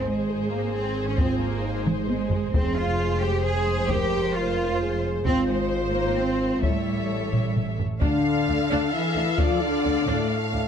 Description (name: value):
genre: cinematic, epic orchestral film score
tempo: 132 BPM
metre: 3/4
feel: straight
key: unclear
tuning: A4 = 440 Hz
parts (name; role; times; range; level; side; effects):
- rich symphonic violin section; melody; 0.0-10.7 s; C5 to F5; -34 LUFS; left 4 dB; none
- warm symphonic violin section; second line; 0.0-10.7 s; Ab4 to F5; -33 LUFS; left 2 dB; none
- warm symphonic viola section; accompaniment; 0.0-10.7 s; Ab3 to C5; -34 LUFS; right 2 dB; none
- dark French horn section; sustained chords; 0.0-10.7 s; A3 to C5; -28 LUFS; left 6 dB; none
- rich symphonic cello section; bass; 0.0-10.7 s; A2 to Ab4; -28 LUFS; right 2 dB; none
- rich symphonic double bass section; bass; 0.0-10.6 s; F1 to D2; -29 LUFS; right 3 dB; none
- taiko ensemble; drums; 1.2-9.8 s; none; -26 LUFS; equal; none
- bright trombone section; sustained chords; 8.0-10.7 s; A2 to F3; -31 LUFS; right 5 dB; none
room: light reverb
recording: close, detailed microphones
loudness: -22 LUFS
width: side -8 dB against mid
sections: 0.0-8.0 A section; 8.0-10.7 B section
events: drum fill 1.9-2.5, 7.3-8.0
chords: 0.0 Ab; 2.5 Fm; 5.3 Ab; 6.6 A7; 8.0 Dm